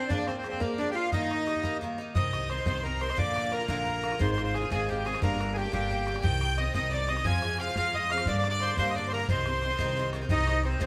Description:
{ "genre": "celtic folk, Celtic jig", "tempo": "118 BPM (dotted quarters)", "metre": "6/8", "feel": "straight", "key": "C minor", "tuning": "A4 = 441 Hz", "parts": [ { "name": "accordion", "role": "melody", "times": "0.0-10.9 s", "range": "Bb3 to Ab5", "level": "-33 LUFS", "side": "equal", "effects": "none" }, { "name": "rich fiddle", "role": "second line", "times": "0.0-10.9 s", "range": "Bb3 to Ab5", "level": "-39 LUFS", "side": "equal", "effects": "none" }, { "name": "Irish bouzouki", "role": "accompaniment", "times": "0.0-10.9 s", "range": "G2 to F4", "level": "-37 LUFS", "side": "equal", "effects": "none" }, { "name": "bodhran", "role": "percussion", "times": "0.1-10.9 s", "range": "none", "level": "-36 LUFS", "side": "equal", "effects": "none" }, { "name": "upright bass", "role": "bass", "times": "2.1-10.9 s", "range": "G1 to G2", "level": "-34 LUFS", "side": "equal", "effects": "none" } ], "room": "moderate stone room reverb, RT60 1.6 s", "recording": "band playing live in one room", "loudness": "-29 LUFS", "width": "mono", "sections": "0.0-2.1 A section; 2.1-10.3 B section", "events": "none", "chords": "0.1 Bb7; 1.1 Eb; 2.1 Cm; 3.2 Bb; 4.2 Fm7/Ab; 5.2 Gm; 6.2 Cm; 7.3 Fm; 8.3 Gm; 9.3 Cm", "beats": "| 0.10 0.61 | 1.12 1.64 | 2.15 2.66 | 3.17 3.68 | 4.19 4.70 | 5.21 5.72 | 6.23 6.74 | 7.25 7.76 | 8.27 8.78 | 9.28 9.79 | 10.30 10.80" }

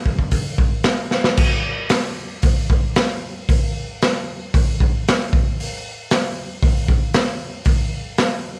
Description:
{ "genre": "rock", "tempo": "115 BPM", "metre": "4/4", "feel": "straight", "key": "none", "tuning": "none", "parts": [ { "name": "raw garage drum kit", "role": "drums", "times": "0.1-8.3 s", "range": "crash cymbal, hi-hat, kick drum, snare drum", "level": "-20 LUFS", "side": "equal", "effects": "none" } ], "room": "light reverb", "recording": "none", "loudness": "-20 LUFS", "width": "mono", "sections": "0.0-1.4 A section; 1.4-8.6 B section", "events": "drum fill 1.1", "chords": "none", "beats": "0.33 0.86 | 1.39 1.92 2.44 2.97 | 3.49 4.02 4.54 5.06 | 5.59 6.11 6.63 7.15 | 7.67 8.19" }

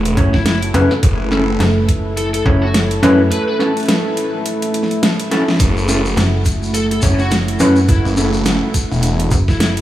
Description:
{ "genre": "glitch hop", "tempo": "105 BPM", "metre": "4/4", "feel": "swing 59% on 16ths", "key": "F# minor pentatonic", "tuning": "A4 = 439 Hz", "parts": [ { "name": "warm analog pad", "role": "sustained chords", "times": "0.0-9.8 s", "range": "A3 to A4", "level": "-20 LUFS", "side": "right 1 dB", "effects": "chorus, vintage 12-bit sampler grit, sidechain pumping" }, { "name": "phased detuned saw bass", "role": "bass", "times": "0.0-1.6, 5.6-9.3 s", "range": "E1 to F#1", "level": "-18 LUFS", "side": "equal", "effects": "phaser, tube saturation" }, { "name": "dubstep drum kit", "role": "drums", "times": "0.1-9.8 s", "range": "hi-hat, snare drum", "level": "-20 LUFS", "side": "equal", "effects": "studio reverb" }, { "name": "mellow electric guitar", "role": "stabs", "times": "0.2-8.3 s", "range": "C#4 to C#5", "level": "-20 LUFS", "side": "left 1 dB", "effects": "sidechain pumping, diffuse ambient delay" }, { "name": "slap-like FM bass", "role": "bass", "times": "0.2-9.8 s", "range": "F#1 to F#2", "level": "-16 LUFS", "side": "equal", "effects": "none" }, { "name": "electronic kick drum", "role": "drums", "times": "0.2-9.6 s", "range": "none", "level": "-15 LUFS", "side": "equal", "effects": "studio reverb" }, { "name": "bluesy overdriven lead guitar", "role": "melody", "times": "0.3-9.7 s", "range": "E4 to B4", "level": "-26 LUFS", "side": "left 1 dB", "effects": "distortion, diffuse ambient delay" }, { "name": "shekere", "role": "percussion", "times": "5.6-9.7 s", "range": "none", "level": "-28 LUFS", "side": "left 2 dB", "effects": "none" } ], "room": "moderate huge ambient reverb, RT60 4.6 s", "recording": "dreamy mix soaked in reverb, small room ambience", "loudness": "-13 LUFS", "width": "side -13 dB against mid", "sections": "0.0-9.8 A section", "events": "break 3.3-5.6; drum fill 5.3", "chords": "0.0 F#m7", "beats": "0.46 | 1.03 1.60 2.17 2.74 | 3.31 3.89 4.46 5.03 | 5.60 6.17 6.74 7.32 | 7.89 8.46 9.03 9.60" }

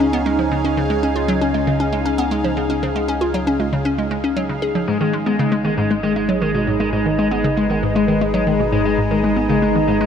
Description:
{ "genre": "ambient, sequencer-driven space music", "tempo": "117 BPM", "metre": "4/4", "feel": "straight", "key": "G# dorian", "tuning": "A4 = 441 Hz", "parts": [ { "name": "phased analog pad", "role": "sustained chords", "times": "0.0-10.1 s", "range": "C#3 to G#5", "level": "-21 LUFS", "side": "right 1 dB", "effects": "phaser, chorus" }, { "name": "hollow square pluck", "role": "riff", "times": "0.0-10.0 s", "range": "G#2 to G#4", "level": "-20 LUFS", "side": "equal", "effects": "chorus, tape echo" }, { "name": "warm sub bass", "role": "bass", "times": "0.0-10.1 s", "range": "G#1 to C#2", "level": "-28 LUFS", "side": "right 1 dB", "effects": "none" }, { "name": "bubbling stepped-filter texture", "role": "texture", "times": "0.0-10.1 s", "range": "D#5 to E#5", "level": "-30 LUFS", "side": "left 4 dB", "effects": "chorus, built-in reverb" }, { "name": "electric guitar at the edge of break-up", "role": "arpeggios", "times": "4.9-10.1 s", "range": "G#3", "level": "-20 LUFS", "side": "left 4 dB", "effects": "auto-pan, tape echo" } ], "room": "wet huge ambient reverb, RT60 7.7 s", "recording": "none", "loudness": "-16 LUFS", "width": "side -8 dB against mid", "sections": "0.0-10.1 A section", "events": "none", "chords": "0.0 C#sus2; 4.9 G#m", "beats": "0.26 | 0.78 1.29 1.80 2.31 | 2.83 3.34 3.85 4.37 | 4.88 5.39 5.91 6.42 | 6.93 7.44 7.96 8.47 | 8.98 9.49 10.01" }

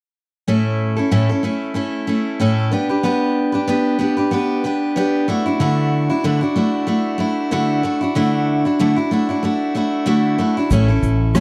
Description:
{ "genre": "acoustic pop", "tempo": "94 BPM", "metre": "4/4", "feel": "swing 55% on 16ths", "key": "D major", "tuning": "A4 = 440 Hz", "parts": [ { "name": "picked steel-string acoustic guitar", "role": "accompaniment", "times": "0.5-11.4 s", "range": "A2 to B4", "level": "-18 LUFS", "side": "equal", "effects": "none" }, { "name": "fretless electric bass", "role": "bass", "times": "10.7-11.4 s", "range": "A1", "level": "-19 LUFS", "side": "equal", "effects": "ensemble chorus" }, { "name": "natural country drum kit", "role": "drums", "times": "10.7-11.4 s", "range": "kick drum, rim click, shaker", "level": "-24 LUFS", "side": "equal", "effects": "none" } ], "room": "small room ambience", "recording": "dry, close 1970s-style studio recording", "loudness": "-18 LUFS", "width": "mono", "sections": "0.5-10.7 A section", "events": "none", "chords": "0.5 A; 2.7 G/B; 5.3 Dadd9; 10.7 A", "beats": "| 0.48 1.12 1.76 2.40 | 3.04 3.67 4.31 4.95 | 5.59 6.23 6.87 7.51 | 8.15 8.79 9.43 10.07 | 10.71 11.35" }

